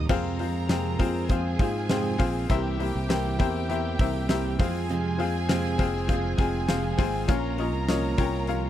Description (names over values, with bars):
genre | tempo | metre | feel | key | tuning
piano-driven pop | 100 BPM | 4/4 | straight | F minor | A4 = 438 Hz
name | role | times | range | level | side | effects
warm studio violin section | second line | 0.0-8.7 s | G4 to Bb5 | -35 LUFS | right 2 dB | none
bright upright piano | accompaniment | 0.0-8.7 s | Bb2 to Ab5 | -30 LUFS | left 9 dB | none
fingerpicked plugged-in steel-string acoustic guitar | riff | 0.0-8.7 s | F2 to G4 | -31 LUFS | right 6 dB | none
fingered electric bass | bass | 0.0-8.7 s | F1 to Ab2 | -30 LUFS | equal | none
huge arena drum kit | drums | 0.1-8.6 s | crash cymbal, hi-hat, kick drum, snare drum | -27 LUFS | equal | none
room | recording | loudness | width
little or no reverb | dry, close 1970s-style studio recording | -23 LUFS | side -12 dB against mid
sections
0.1-8.7 A section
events
none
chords
0.1 Fm; 2.5 C7; 4.6 Fm; 7.3 Bbm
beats
| 0.10 0.70 1.30 1.90 | 2.50 3.10 3.69 4.29 | 4.89 5.49 6.09 6.69 | 7.29 7.89 8.49